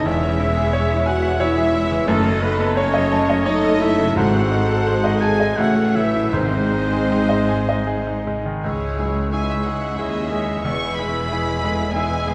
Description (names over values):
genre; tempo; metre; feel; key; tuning
classical, romantic movement for piano and orchestra; 76-95 BPM; 3/4; rubato; C# minor; A4 = 440 Hz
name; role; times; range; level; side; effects
clear baby grand piano; melody; 0.0-12.3 s; C#2 to A5; -25 LUFS; equal; none
rich symphonic violin section; melody; 0.0-12.3 s; B#4 to C#6; -34 LUFS; equal; none
clear symphonic violin section; second line; 0.0-12.3 s; G#4 to G#5; -36 LUFS; equal; none
silver concert flute; second line; 0.0-12.3 s; A4 to E6; -31 LUFS; equal; none
warm oboe; second line; 0.0-12.3 s; A4 to G#5; -31 LUFS; equal; none
rich symphonic viola section; accompaniment; 0.0-12.3 s; E3 to A4; -30 LUFS; equal; none
mellow French horn section; sustained chords; 0.0-12.3 s; G#3 to G#4; -27 LUFS; equal; none
rich studio cello section; bass; 0.0-12.3 s; C#2 to A2; -28 LUFS; equal; none
rich studio double bass section; bass; 0.0-12.3 s; E1 to D#2; -29 LUFS; equal; none
warm trombone section; sustained chords; 0.1-6.6 s; B#2 to A3; -33 LUFS; equal; none
timpani; percussion; 4.2-7.4 s; G#2; -30 LUFS; equal; none
warm bassoon; accompaniment; 8.6-12.3 s; G#3; -33 LUFS; equal; none
room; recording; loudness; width
wet scoring stage reverb, RT60 1.8 s; nothing above 10.6 kHz; -19 LUFS; mono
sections
0.0-8.6 A section; 8.6-12.3 B section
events
none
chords
0.1 C#m/E; 2.1 D#m7b5/F#; 4.2 G#7b9; 5.6 A; 6.3 G#; 8.6 C#m; 10.6 E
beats
| 0.07 0.74 1.41 | 2.09 2.77 3.46 | 4.17 4.86 5.58 | 6.33 7.10 7.87 | 8.63 9.31 9.98 | 10.65 11.30 11.94